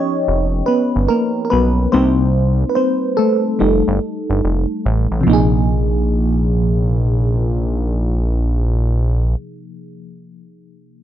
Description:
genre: R&B, neo-soul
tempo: 72 BPM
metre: 4/4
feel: swing 64% on 16ths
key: Bb dorian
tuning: A4 = 439 Hz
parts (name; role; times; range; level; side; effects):
- FM electric piano with auto-pan; accompaniment; 0.0-11.0 s; C3 to G5; -18 LUFS; equal; phaser
- fat analog bass; bass; 0.3-9.4 s; F1 to C2; -16 LUFS; equal; none
room: light reverb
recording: none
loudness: -14 LUFS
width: side -11 dB against mid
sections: 0.0-5.3 A section; 5.3-8.6 B section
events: FM electric piano solo 0.0-5.3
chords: 0.0 G7alt; 1.9 Cm7; 3.6 F7; 5.3 Bb5

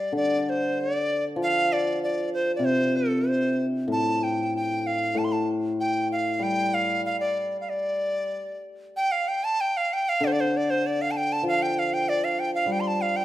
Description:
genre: chinese traditional, Chinese chamber ensemble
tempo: 96 BPM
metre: 2/4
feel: rubato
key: D yu mode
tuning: A4 = 439 Hz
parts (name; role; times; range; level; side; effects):
- bright dizi; melody; 0.0-13.2 s; A4 to C6; -25 LUFS; right 1 dB; none
- hammered dulcimer; accompaniment; 0.0-13.2 s; A2 to G3; -27 LUFS; left 1 dB; none
room: moderate recital hall reverb, RT60 1.7 s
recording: minimal, uncompressed stereo recording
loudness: -23 LUFS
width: side -14 dB against mid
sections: 0.0-8.9 A section; 8.9-13.2 B section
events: none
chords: none

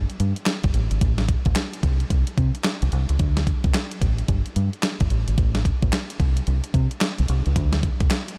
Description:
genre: R&B, new jack swing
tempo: 110 BPM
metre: 4/4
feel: swing 63% on 16ths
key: unclear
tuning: A4 = 440 Hz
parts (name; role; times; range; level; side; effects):
- deep dub fingered electric bass; bass; 0.0-8.1 s; G1 to C3; -24 LUFS; equal; none
- clean 12-bit digital drum machine; drums; 0.1-8.4 s; handclaps, hi-hat, kick drum, snare drum; -25 LUFS; equal; none
room: light reverb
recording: none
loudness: -22 LUFS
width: mono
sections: 0.0-8.4 A section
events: none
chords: none

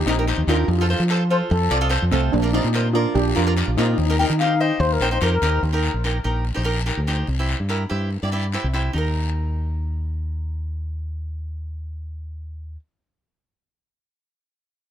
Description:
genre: calypso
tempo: 145 BPM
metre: 4/4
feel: swing 53% on 16ths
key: Eb major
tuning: A4 = 440 Hz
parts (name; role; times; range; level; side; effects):
- steel pan; melody; 0.0-4.5 s; A3 to G4; -24 LUFS; right 1 dB; digital delay
- cavaquinho; accompaniment; 0.1-12.8 s; Eb4 to E5; -26 LUFS; right 2 dB; none
- fingered electric bass; bass; 0.1-12.8 s; Bb1 to F3; -22 LUFS; equal; none
- guiro; percussion; 0.1-9.1 s; none; -31 LUFS; left 6 dB; none
- mellow wooden flute; second line; 1.3-5.6 s; A4 to G5; -24 LUFS; left 3 dB; digital delay
room: light reverb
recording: none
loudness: -19 LUFS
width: side -10 dB against mid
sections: 0.0-5.6 A section; 5.6-8.9 B section; 8.9-12.3 C section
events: cavaquinho fill 8.3-8.9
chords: 0.0 Eb; 0.7 F; 2.3 Bb; 4.0 Eb; 7.3 C; 8.9 Eb5

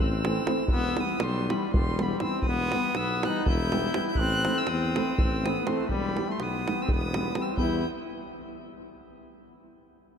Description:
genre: balkan folk, Balkan wedding band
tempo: 244 BPM (eighths)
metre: 7/8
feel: straight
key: E harmonic minor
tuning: A4 = 440 Hz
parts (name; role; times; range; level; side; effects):
- warm violin; melody; 0.0-7.8 s; B5 to G6; -33 LUFS; right 1 dB; none
- clear trumpet; second line; 0.0-7.9 s; G3 to E4; -32 LUFS; left 3 dB; none
- mellow tuba; bass; 0.0-7.8 s; E1 to E2; -31 LUFS; equal; none
- davul; percussion; 0.1-7.8 s; none; -30 LUFS; right 1 dB; none
- flamenco guitar; accompaniment; 0.3-7.8 s; E3 to E4; -32 LUFS; equal; none
room: wet cathedral reverb, RT60 5.3 s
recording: in a vast, echoing space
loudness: -24 LUFS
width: side -7 dB against mid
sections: 0.0-7.6 A section; 7.6-9.3 B section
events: speeding up 0.0-9.3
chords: 0.0 Am; 0.7 Em; 4.2 Am; 5.9 Em

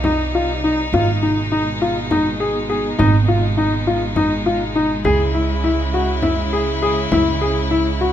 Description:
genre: contemporary instrumental, chamber music in an uneven meter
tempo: 203 BPM (eighths)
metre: 7/8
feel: straight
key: unclear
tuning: A4 = 437 Hz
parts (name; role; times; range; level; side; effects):
- clear chamber string section; sustained chords; 0.0-8.1 s; B2 to E4; -23 LUFS; left 1 dB; none
- warm concert grand piano; arpeggios; 0.0-8.1 s; Eb4 to G#4; -18 LUFS; left 2 dB; none
- upright bass; bass; 0.0-8.1 s; G#1 to C#2; -21 LUFS; right 3 dB; none
- frame drum; percussion; 0.0-7.4 s; none; -25 LUFS; left 3 dB; none
room: light reverb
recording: close, detailed microphones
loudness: -16 LUFS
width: side -10 dB against mid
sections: 0.0-8.1 A section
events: none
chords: 0.0 Cm; 0.9 G#m; 5.1 C#m

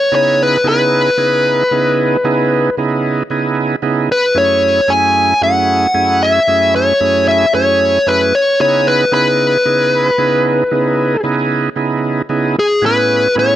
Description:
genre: blues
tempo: 113 BPM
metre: 4/4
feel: swing 55% on 16ths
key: C# minor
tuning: A4 = 440 Hz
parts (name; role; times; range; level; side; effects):
- dark smooth lead guitar; melody; 0.0-13.6 s; G#4 to G#5; -12 LUFS; left 2 dB; overdrive
- overdriven tonewheel organ; accompaniment; 0.1-13.6 s; F#2 to G#4; -16 LUFS; right 4 dB; slow rotary speaker
room: digital ambience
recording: dry, close 1970s-style studio recording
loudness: -11 LUFS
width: side -12 dB against mid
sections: 0.0-13.6 A section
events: none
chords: 0.0 C#m9; 4.1 F#m9; 8.3 C#m9; 12.6 Amaj7

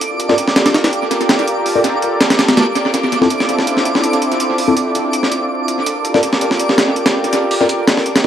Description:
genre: drum and bass, jungle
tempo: 164 BPM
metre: 4/4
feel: swing 53% on 16ths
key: unclear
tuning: A4 = 440 Hz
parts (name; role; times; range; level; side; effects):
- lush unison pad; sustained chords; 0.0-8.3 s; C4 to D5; -18 LUFS; equal; chorus
- breakbeat sampler-style drum kit; drums; 0.0-8.3 s; hi-hat, snare drum; -15 LUFS; equal; high-pass filter on snare, studio reverb, high-pass filter on hats, high-pass filter on kick, tape echo
- twinkling granular texture; texture; 0.0-8.3 s; D6; -23 LUFS; right 3 dB; built-in reverb
- mellow tine electric piano; stabs; 0.3-8.3 s; C4 to D5; -18 LUFS; left 2 dB; medium stereo tremolo, low-pass filter, dub echo
room: moderate plate reverb, RT60 1.2 s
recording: echo-heavy mix, vinyl crackle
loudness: -12 LUFS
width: side -10 dB against mid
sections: 0.0-8.3 A section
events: filter sweep on tine electric piano 0.0-8.3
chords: 0.0 Gm9; 2.9 Dm9; 5.9 Gm9

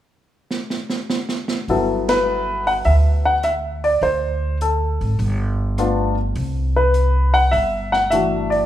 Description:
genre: jazz piano trio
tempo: 103 BPM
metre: 4/4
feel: swing 69% on 8ths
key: G major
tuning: A4 = 444 Hz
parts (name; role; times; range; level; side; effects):
- open jazz drum kit; drums; 0.5-8.6 s; hi-hat, ride cymbal, rim click, snare drum; -27 LUFS; right 3 dB; none
- warm baby grand piano; melody; 1.7-8.7 s; E3 to F#5; -18 LUFS; left 1 dB; none
- upright bass; bass; 1.7-8.7 s; G1 to D2; -20 LUFS; equal; none
room: moderate recital hall reverb, RT60 1.4 s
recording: recorded in a church or concert hall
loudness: -17 LUFS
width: side -12 dB against mid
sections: 0.0-1.7 A section; 1.7-8.7 B section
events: drum fill 0.5-1.7; band accent 2.0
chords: 0.0 N.C.; 1.7 Gmaj9; 4.0 D5; 5.2 G9; 6.4 Cmaj9#11

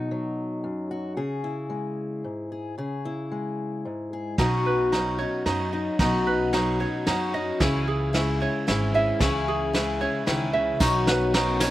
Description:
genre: indie folk with a building arrangement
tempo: 112 BPM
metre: 3/4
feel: straight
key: B major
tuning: A4 = 440 Hz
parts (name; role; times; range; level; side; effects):
- fingerpicked acoustic archtop guitar; accompaniment; 0.0-10.8 s; F#2 to G#4; -29 LUFS; left 2 dB; none
- picked twelve-string acoustic guitar; accompaniment; 4.4-11.7 s; B2 to G#4; -27 LUFS; left 4 dB; slapback echo
- ukulele; arpeggios; 4.4-11.7 s; D#4 to E5; -27 LUFS; right 4 dB; slapback echo
- upright bass; bass; 4.4-11.6 s; G#1 to F#2; -29 LUFS; right 1 dB; none
- vintage brush drum kit; drums; 4.4-11.7 s; kick drum, ride cymbal, snare drum; -28 LUFS; equal; none
- warm chamber string section; sustained chords; 10.8-11.7 s; D#3 to C#4; -32 LUFS; left 1 dB; none
- tambourine; percussion; 10.8-11.7 s; none; -37 LUFS; right 4 dB; none
room: little or no reverb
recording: recorded outdoors, with no room sound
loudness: -23 LUFS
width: side -14 dB against mid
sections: 0.0-4.4 A section; 4.4-11.7 B section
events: build-up 4.4-11.7; drum fill 4.4-11.7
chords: 0.0 B; 1.2 C#m; 4.4 Badd9; 7.6 C#m; 10.8 Badd9

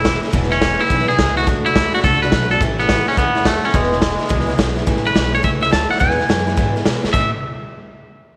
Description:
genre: rockabilly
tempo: 212 BPM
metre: 4/4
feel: swing 64% on 8ths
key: A major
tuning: A4 = 437 Hz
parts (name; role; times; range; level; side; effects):
- twangy electric guitar; melody; 0.0-7.3 s; G#3 to A5; -21 LUFS; equal; spring reverb, tape echo
- picked old ladder-braced acoustic guitar; accompaniment; 0.0-7.3 s; E2 to F#4; -26 LUFS; equal; none
- upright bass; bass; 0.0-7.3 s; E1 to B2; -25 LUFS; equal; none
- raw garage drum kit; drums; 0.1-7.2 s; crash cymbal, hi-hat, kick drum, snare drum; -21 LUFS; equal; none
room: little or no reverb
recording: none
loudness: -17 LUFS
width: mono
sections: 0.0-4.9 A section; 4.9-7.1 B section; 7.1-8.3 C section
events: drum fill 7.0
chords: 0.3 E; 1.5 D; 2.6 A; 3.7 E; 4.9 A; 6.0 E; 7.1 A

